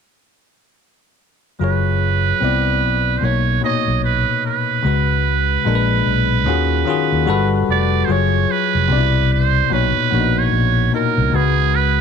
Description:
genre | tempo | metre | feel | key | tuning
R&B | 74 BPM | 4/4 | swing 62% on 16ths | F# major | A4 = 439 Hz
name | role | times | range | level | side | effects
trumpet with metal mute | melody | 1.6-12.0 s | G#4 to D#5 | -19 LUFS | right 13 dB | none
bell-like tine electric piano | accompaniment | 1.6-12.0 s | A#2 to D5 | -19 LUFS | left 8 dB | medium stereo tremolo
fingered electric bass | bass | 1.6-12.0 s | E#1 to D#2 | -18 LUFS | right 1 dB | none
room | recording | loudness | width
light reverb, small room ambience | 1960s-style stereo with parts hard left and right | -15 LUFS | side -7 dB against mid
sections
1.6-8.1 A section; 8.1-12.0 B section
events
none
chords
1.6 F#sus2; 2.4 Cmaj9; 3.2 Bmaj9; 4.8 C#7sus4; 5.7 A#7b9; 6.5 D#m11; 7.3 Gmaj9; 8.1 F#sus2; 8.9 Cmaj9; 9.7 Bmaj9; 11.3 C#7sus4

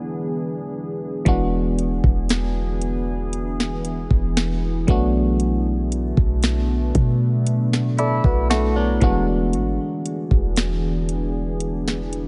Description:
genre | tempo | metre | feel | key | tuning
contemporary R&B | 58 BPM | 4/4 | straight | unclear | A4 = 436 Hz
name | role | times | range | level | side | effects
FM electric piano | accompaniment | 0.0-12.3 s | E3 to D5 | -27 LUFS | equal | chorus
deep dark ambient pad | sustained chords | 0.0-12.3 s | E3 to G#4 | -30 LUFS | equal | chorus, built-in reverb
clean 808-style bass | bass | 1.3-12.3 s | E1 to B2 | -25 LUFS | equal | none
smooth R&B drum kit | drums | 1.3-12.3 s | hi-hat, kick drum, snare drum | -23 LUFS | equal | none
direct-recorded clean electric guitar | arpeggios | 8.0-9.3 s | F#3 to F#4 | -29 LUFS | equal | tremolo, delay
room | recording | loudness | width
digital ambience | nothing above 10.7 kHz | -21 LUFS | mono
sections
0.0-1.3 A section; 1.3-12.3 B section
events
break 0.0-1.3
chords
0.0 E7; 4.9 Bm7; 9.0 E7

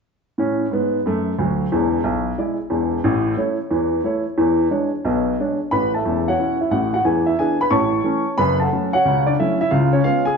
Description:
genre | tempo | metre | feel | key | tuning
jazz, stride piano | 180 BPM | 4/4 | swing 65% on 8ths | A major | A4 = 440 Hz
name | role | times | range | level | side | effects
warm upright piano | solo | 0.4-10.4 s | E1 to C#6 | -17 LUFS | equal | none
room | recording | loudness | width
wet large studio reverb, RT60 1.1 s | band playing live in one room, nothing above 7.7 kHz | -17 LUFS | side -5 dB against mid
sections
0.4-5.7 A section; 5.7-10.4 B section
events
none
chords
0.4 A; 1.7 E7; 3.0 A; 4.4 E6; 5.7 A; 7.0 E7; 7.7 A; 8.4 F#m; 9.7 C#7

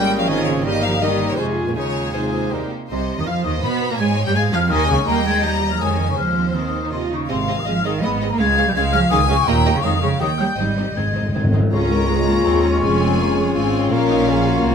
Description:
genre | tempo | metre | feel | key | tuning
quick classical-period movement for symphony orchestra | 164 BPM | 3/4 | straight | Ab major, Db major from 11.7 s | A4 = 440 Hz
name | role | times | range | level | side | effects
rich chamber violin section | melody | 0.0-14.7 s | F4 to B5 | -29 LUFS | left 2 dB | none
clear clarinet | second line | 0.0-2.7, 11.7-14.7 s | Eb4 to Bb4 | -27 LUFS | left 2 dB | none
mellow hollow small flute group | second line | 0.0-14.7 s | Bb5 to Ab6 | -25 LUFS | left 6 dB | none
warm chamber violin section | second line | 0.0-14.7 s | F4 to Bb5 | -25 LUFS | left 3 dB | none
warm cor anglais | second line | 0.0-2.7, 11.7-14.7 s | Bb4 to Ab5 | -30 LUFS | right 2 dB | none
clear chamber viola section | accompaniment | 0.0-14.7 s | C3 to Ab4 | -26 LUFS | right 2 dB | none
dark bassoon | accompaniment | 0.0-2.7, 11.7-14.7 s | F3 to Bb3 | -27 LUFS | right 1 dB | none
mellow French horn section | sustained chords | 0.0-2.6, 11.7-14.7 s | G3 to F4 | -22 LUFS | left 6 dB | none
clear chamber cello section | bass | 0.0-14.7 s | Db2 to B3 | -24 LUFS | right 3 dB | none
clear chamber double bass section | bass | 0.0-14.7 s | F1 to B2 | -23 LUFS | right 3 dB | none
timpani | percussion | 0.0-0.1, 10.6-11.7 s | Ab2 | -23 LUFS | left 1 dB | none
room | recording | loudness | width
moderate scoring stage reverb, RT60 1.5 s | none | -16 LUFS | side -7 dB against mid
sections
0.0-2.9 A section; 2.9-11.7 B section; 11.7-14.7 C section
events
timpani fill 10.6-11.7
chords
0.0 Bbm7/Ab; 0.6 Eb/G; 1.4 Db/F; 1.8 Ab/Eb; 2.5 Eb; 2.9 Cmmaj7; 4.0 Db; 5.1 Eb; 5.8 Db/F; 6.2 Ab/Eb; 6.9 Dbmaj9/Eb; 7.3 Ab; 8.4 Db; 9.5 Eb; 9.8 Db/F; 10.2 Eb7; 10.6 Ab; 11.7 Db; 12.8 Db/F; 13.9 Bbm

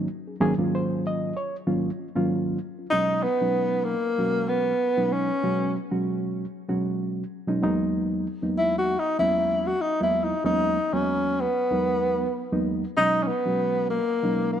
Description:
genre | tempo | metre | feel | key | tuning
jazz | 96 BPM | 4/4 | swing 53% on 16ths | unclear | A4 = 440 Hz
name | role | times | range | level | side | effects
bright reed electric piano | accompaniment | 0.0-14.6 s | E2 to D#5 | -26 LUFS | right 1 dB | overdrive
breathy tenor saxophone | melody | 2.9-14.6 s | A#3 to F#4 | -23 LUFS | left 1 dB | slapback echo
room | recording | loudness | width
moderate echo chamber reverb, RT60 2.7 s | none | -22 LUFS | side -9 dB against mid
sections
0.0-2.9 A section; 2.9-14.6 B section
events
none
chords
0.0 G#13sus4; 2.9 B69; 7.6 Emaj9#11; 13.0 B69

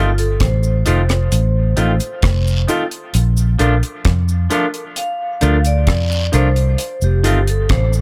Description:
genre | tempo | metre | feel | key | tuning
roots reggae | 66 BPM | 4/4 | straight | Bb major | A4 = 440 Hz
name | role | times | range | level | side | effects
vibraphone with medium hard mallets | melody | 0.0-7.9 s | F4 to F5 | -26 LUFS | equal | dub echo
clean electric guitar | accompaniment | 0.0-7.4 s | Eb3 to F4 | -26 LUFS | equal | dub echo
reed electric piano | stabs | 0.0-7.4 s | D4 to Bb4 | -25 LUFS | equal | fast tremolo
vintage muted fingered electric bass | bass | 0.0-8.0 s | F1 to F2 | -17 LUFS | equal | none
deep reggae drum kit | drums | 0.2-7.9 s | hi-hat, kick drum, rim click | -22 LUFS | equal | none
cabasa and guiro | percussion | 0.6-8.0 s | none | -32 LUFS | equal | none
room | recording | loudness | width
small room ambience | none | -16 LUFS | mono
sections
0.0-8.0 A section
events
vibraphone solo 0.0-8.0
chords
0.0 F7; 3.1 Bbmaj7; 6.8 F7

